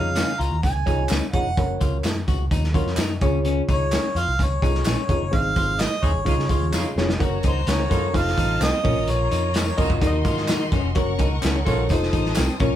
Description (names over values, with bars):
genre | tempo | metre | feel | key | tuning
uptempo 1960s-style soul | 128 BPM | 4/4 | straight | Db major | A4 = 440 Hz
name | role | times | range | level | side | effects
warm harmonica | melody | 0.0-10.0 s | C5 to Bb5 | -26 LUFS | right 1 dB | none
barky reed electric piano | accompaniment | 0.0-12.8 s | Ab2 to Eb5 | -27 LUFS | left 1 dB | overdrive, harmonic tremolo
semi-hollow electric guitar | riff | 0.0-12.8 s | C4 to Ab4 | -30 LUFS | left 7 dB | none
picked electric bass | bass | 0.0-12.8 s | F1 to Db3 | -24 LUFS | equal | none
crunchy breakbeat drum kit | drums | 0.2-12.7 s | hi-hat, kick drum, snare drum | -24 LUFS | equal | none
handclaps and tambourine | percussion | 0.2-12.7 s | none | -36 LUFS | equal | none
clear saxophone section | second line | 6.0-12.0 s | C3 to Bb4 | -31 LUFS | right 4 dB | none
bright studio violin section | second line | 7.2-12.8 s | F4 to Eb6 | -32 LUFS | left 2 dB | none
room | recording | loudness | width
light reverb | band playing live in one room | -19 LUFS | side -11 dB against mid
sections
0.0-7.2 A section; 7.2-12.8 B section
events
band accent 5.3-7.2; drum fill 6.7-7.2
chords
0.0 Db; 1.6 Gb; 3.2 Db; 5.3 Ab; 6.3 Db; 7.2 Gb; 8.1 F7; 8.8 Bbm; 10.0 Ebm; 11.0 Gb; 11.9 F7